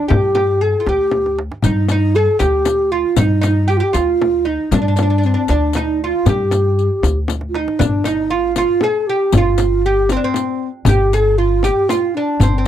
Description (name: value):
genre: Persian modal ensemble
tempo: 78 BPM (dotted quarters)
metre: 6/8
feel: straight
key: G dastgah homayun, G dastgah shur from 7.8 s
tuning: A4 = 439 Hz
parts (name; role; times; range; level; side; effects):
- mellow hollow wooden-headed alto flute; melody; 0.0-12.7 s; C4 to A4-46c; -17 LUFS; right 1 dB; none
- oud; second line; 0.0-12.7 s; C4 to Ab4+45c; -23 LUFS; right 4 dB; none
- upright bass; bass; 0.1-12.7 s; G1 to G2; -18 LUFS; equal; none
- frame drum; percussion; 0.1-12.5 s; none; -21 LUFS; left 4 dB; none
- tombak; percussion; 0.1-12.5 s; none; -21 LUFS; right 1 dB; none
- riq; percussion; 1.6-12.5 s; none; -27 LUFS; left 17 dB; none
room: little or no reverb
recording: dry, close 1970s-style studio recording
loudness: -13 LUFS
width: side -10 dB against mid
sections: 0.0-7.8 A section; 7.8-12.7 B section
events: drum fill 1.1-1.6, 7.3-7.8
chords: none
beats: | 0.10 0.88 | 1.65 2.42 | 3.19 3.96 | 4.72 5.49 | 6.26 7.03 | 7.80 8.57 | 9.34 10.11 | 10.87 11.64 | 12.41